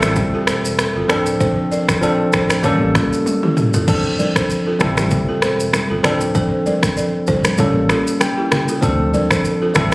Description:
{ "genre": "afrobeats", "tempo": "97 BPM", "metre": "4/4", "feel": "swing 55% on 16ths", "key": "D minor", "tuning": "A4 = 443 Hz", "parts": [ { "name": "bell-like tine electric piano", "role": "accompaniment", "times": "0.0-9.9 s", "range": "E3 to G5", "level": "-18 LUFS", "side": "equal", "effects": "medium stereo tremolo" }, { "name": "balafon", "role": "riff", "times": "0.0-9.9 s", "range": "E4 to D5", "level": "-23 LUFS", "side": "right 1 dB", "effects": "tape echo" }, { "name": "sub bass with octave", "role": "bass", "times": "0.0-9.9 s", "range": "D1 to D2", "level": "-23 LUFS", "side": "equal", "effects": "none" }, { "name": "deep house drum kit", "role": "drums", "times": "0.0-9.9 s", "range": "crash cymbal, finger snaps, kick drum, rim click, shaker, toms", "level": "-19 LUFS", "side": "equal", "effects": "none" }, { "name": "congas", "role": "percussion", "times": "4.2-9.9 s", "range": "none", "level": "-23 LUFS", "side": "equal", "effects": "none" } ], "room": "light reverb, digital ambience", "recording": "recorded on a phone in the room, studio reverb", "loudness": "-14 LUFS", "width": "side -22 dB against mid", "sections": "0.0-3.9 A section; 3.9-9.9 B section", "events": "drum fill 3.3-3.9; tine electric piano fill 7.9-8.8", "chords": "0.0 Am7; 1.1 Dm7; 2.6 A7b9; 3.9 Dm7; 4.8 Am7; 6.0 Dm7; 7.6 A7b9; 8.8 Dm7" }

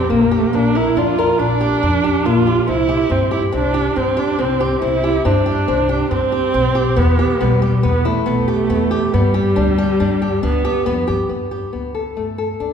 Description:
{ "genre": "contemporary instrumental, chamber music in an uneven meter", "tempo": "140 BPM", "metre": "5/4", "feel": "straight", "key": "G mixolydian", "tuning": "A4 = 439 Hz", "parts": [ { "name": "dark viola", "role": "second line", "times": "0.0-11.0 s", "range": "G3 to F4", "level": "-18 LUFS", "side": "right 3 dB", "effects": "none" }, { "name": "nylon-string guitar", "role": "arpeggios", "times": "0.0-12.7 s", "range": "A3 to Bb4", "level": "-19 LUFS", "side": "left 3 dB", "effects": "none" }, { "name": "upright bass", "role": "bass", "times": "0.1-12.7 s", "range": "Bb1 to G2", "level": "-20 LUFS", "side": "equal", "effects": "none" } ], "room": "wet concert hall reverb, RT60 2.6 s", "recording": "recorded in a church or concert hall", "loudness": "-14 LUFS", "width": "side -7 dB against mid", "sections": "0.0-11.3 A section; 11.3-12.7 B section", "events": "none", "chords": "0.0 Bb; 2.7 C; 7.0 Em; 9.1 G; 11.3 Gadd9" }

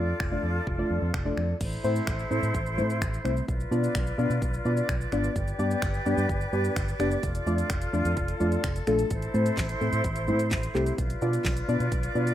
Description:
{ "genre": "dance-pop", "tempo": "128 BPM", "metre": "4/4", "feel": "straight", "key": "A minor", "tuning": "A4 = 436 Hz", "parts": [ { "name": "deep mellow chord stab", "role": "accompaniment", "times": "0.0-12.3 s", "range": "A3 to D5", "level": "-29 LUFS", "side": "left 1 dB", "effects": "chorus, sidechain pumping" }, { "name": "breathy bright small flute group", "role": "sustained chords", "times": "0.0-12.3 s", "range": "E4 to D5", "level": "-32 LUFS", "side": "equal", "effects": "sidechain pumping" }, { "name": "vintage muted fingered electric bass", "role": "bass", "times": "0.0-12.3 s", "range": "F1 to B2", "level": "-29 LUFS", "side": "equal", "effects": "sidechain pumping" }, { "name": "pop drum kit", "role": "drums", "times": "0.2-12.3 s", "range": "crash cymbal, finger snaps, handclaps, hi-hat, kick drum, shaker, snare drum", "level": "-32 LUFS", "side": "equal", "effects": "none" } ], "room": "light reverb", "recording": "rough home demo mix", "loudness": "-25 LUFS", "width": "side -12 dB against mid", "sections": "0.0-1.6 A section; 1.6-12.3 B section", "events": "none", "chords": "0.0 Dm/F; 1.6 Am; 3.5 Bdim; 5.4 G; 7.2 Dm/F; 9.1 Am; 11.0 Bdim" }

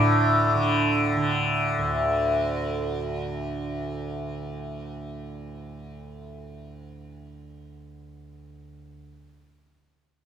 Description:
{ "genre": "indian classical, Hindustani", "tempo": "free time", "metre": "none", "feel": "none", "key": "unclear", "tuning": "A4 = 439 Hz", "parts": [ { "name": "santur", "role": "melody", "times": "0.0-3.7 s", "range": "D4 to E4", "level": "-28 LUFS", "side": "right 1 dB", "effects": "none" }, { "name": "tanpura", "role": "drone", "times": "0.0-8.9 s", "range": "D2 to D3", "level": "-26 LUFS", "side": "equal", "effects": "none" } ], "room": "moderate small room reverb, RT60 0.5 s", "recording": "minimal, uncompressed stereo recording", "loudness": "-23 LUFS", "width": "side -8 dB against mid", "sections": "0.0-2.3 A section", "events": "none", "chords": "none" }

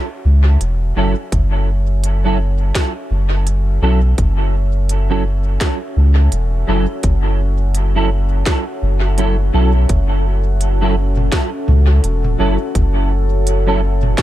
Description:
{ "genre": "ambient dub", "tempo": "84 BPM", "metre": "4/4", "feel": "swing 58% on 16ths", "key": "F# minor", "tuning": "A4 = 444 Hz", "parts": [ { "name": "deep dark ambient pad", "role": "sustained chords", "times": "0.1-14.2 s", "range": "C#4 to E5", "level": "-26 LUFS", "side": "left 1 dB", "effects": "chorus, built-in reverb" }, { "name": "soft dub sub bass", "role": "bass", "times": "0.2-14.2 s", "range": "E1 to C#2", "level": "-14 LUFS", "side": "equal", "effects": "none" }, { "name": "organic electronic drum kit", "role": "drums", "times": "0.6-14.2 s", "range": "hi-hat, snare drum, toms", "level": "-25 LUFS", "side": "right 2 dB", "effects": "dub echo" }, { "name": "semi-hollow electric guitar", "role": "stabs", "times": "1.0-13.8 s", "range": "F#3 to A4", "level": "-22 LUFS", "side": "right 2 dB", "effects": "ensemble chorus, dub echo" }, { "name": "electronic kick drum", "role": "drums", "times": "1.3-14.2 s", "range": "none", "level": "-18 LUFS", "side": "equal", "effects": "none" } ], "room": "little or no reverb", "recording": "echo-heavy mix", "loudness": "-13 LUFS", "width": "side -14 dB against mid", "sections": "0.0-14.2 A section", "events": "fade-in on ambient pad 0.0-14.2", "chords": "0.0 F#m7" }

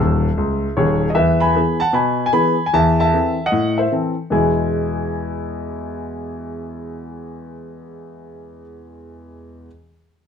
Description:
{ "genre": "jazz, stride piano", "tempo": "153 BPM", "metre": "4/4", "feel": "swing 65% on 8ths", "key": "E major", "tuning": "A4 = 441 Hz", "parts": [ { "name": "warm grand piano", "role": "solo", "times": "0.0-9.7 s", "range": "D#1 to E6", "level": "-18 LUFS", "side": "left 1 dB", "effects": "none" } ], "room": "light reverb", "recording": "dark, warm production", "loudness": "-16 LUFS", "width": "side -7 dB against mid", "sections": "0.0-1.2 A section; 1.2-4.3 B section; 4.3-7.5 C section", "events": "grand piano fill 0.0-1.2", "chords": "0.0 E; 2.7 Am/E; 4.3 E" }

